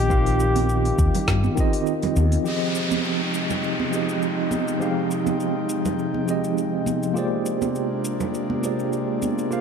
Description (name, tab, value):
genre	sunset chillout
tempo	102 BPM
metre	4/4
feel	swing 54% on 16ths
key	F dorian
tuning	A4 = 440 Hz
part	warm flugelhorn	melody	0.0-1.8 s	G4	-26 LUFS	left 1 dB	tape echo
part	tine electric piano	accompaniment	0.0-9.6 s	Eb3 to F5	-24 LUFS	moving between left 2 dB and right 4 dB	medium stereo tremolo, auto-pan, tape echo
part	fretless electric bass	bass	0.0-2.4 s	Bb1 to G2	-20 LUFS	left 1 dB	none
part	deep house drum kit	drums	0.1-9.6 s	hi-hat, shaker, snare drum	-33 LUFS	left 1 dB	small room ambience
part	electronic kick drum	drums	0.1-1.7 s	none	-23 LUFS	left 1 dB	small room ambience
part	congas	percussion	0.6-9.4 s	none	-30 LUFS	right 4 dB	none
part	airy breathy pad	sustained chords	2.5-9.6 s	C3 to G5	-28 LUFS	equal	chorus
part	downlifter	sound effects	2.5-7.2 s	none	-31 LUFS	equal	none
room	moderate lush hall reverb, RT60 1.8 s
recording	dark, warm production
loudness	-20 LUFS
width	side -6 dB against mid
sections	0.0-2.5 A section; 2.5-9.6 B section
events	filter sweep on tine electric piano 0.0-2.5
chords	0.0 Eb6; 2.5 Fm9; 7.2 Bb13